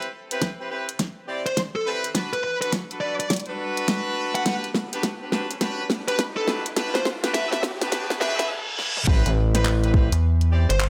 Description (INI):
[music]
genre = glitch hop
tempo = 104 BPM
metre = 4/4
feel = swing 64% on 16ths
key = unclear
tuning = A4 = 440 Hz
[part]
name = bright horn section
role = stabs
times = 0.0-10.7 s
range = C4 to D5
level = -31 LUFS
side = equal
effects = sidechain pumping, tape echo
[part]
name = pop drum kit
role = drums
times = 0.0-10.9 s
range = handclaps, hi-hat, snare drum, toms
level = -29 LUFS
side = equal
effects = small room reverb
[part]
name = riser and reverse cymbal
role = sound effects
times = 1.9-9.1 s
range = none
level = -36 LUFS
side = equal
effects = none
[part]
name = electronic kick drum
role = drums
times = 0.4-10.1 s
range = none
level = -25 LUFS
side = equal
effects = high-pass filter on kick, small room reverb
[part]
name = high-gain lead guitar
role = melody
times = 1.5-10.8 s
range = A4 to F#5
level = -30 LUFS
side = equal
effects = distortion, tape echo
[part]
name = gritty driven synth bass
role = bass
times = 9.1-10.1 s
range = A1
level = -23 LUFS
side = equal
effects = tube saturation
[part]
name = rubbery square bass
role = bass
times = 10.1-10.9 s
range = G1 to E2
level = -20 LUFS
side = equal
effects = tube saturation
[sound]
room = light reverb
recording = high-pass filter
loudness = -24 LUFS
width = mono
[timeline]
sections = 0.0-9.1 A section; 9.1-10.9 B section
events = build-up 0.0-9.1; drum fill 0.0-8.5, 8.8; riser 1.9-8.5; reverse cymbal 7.9-9.1; drop 9.1-10.9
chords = 0.0 Cmaj7; 2.1 Bm7; 4.5 Gmaj7/D; 9.1 Am9